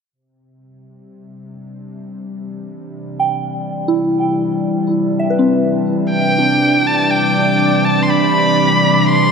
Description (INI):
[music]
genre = ambient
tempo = 60 BPM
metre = 3/4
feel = straight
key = C major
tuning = A4 = 440 Hz
[part]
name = warbly tape-like pad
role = sustained chords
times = 1.4-9.3 s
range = C3 to D5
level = -18 LUFS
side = equal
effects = chorus, built-in reverb
[part]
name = bowed-like drone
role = drone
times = 0.8-9.3 s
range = C3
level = -26 LUFS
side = equal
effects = built-in reverb
[part]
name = soft synth bell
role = arpeggios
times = 3.2-9.3 s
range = C4 to G5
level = -18 LUFS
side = equal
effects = chorus, phaser, diffuse ambient delay
[part]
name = rich electric violin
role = melody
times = 6.1-9.3 s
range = G5 to C6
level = -15 LUFS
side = equal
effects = diffuse ambient delay
[part]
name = drifting glass-harmonics texture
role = texture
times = 6.7-9.3 s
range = D5 to D6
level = -23 LUFS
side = left 1 dB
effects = chorus, built-in reverb
[sound]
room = wet cathedral reverb, RT60 5.5 s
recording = in a vast, echoing space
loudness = -13 LUFS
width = side -6 dB against mid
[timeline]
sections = 0.1-9.3 A section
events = fade-in on ambient pad 0.1-9.3; fade-in on synth drone 0.1-9.3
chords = 0.1 Cmaj9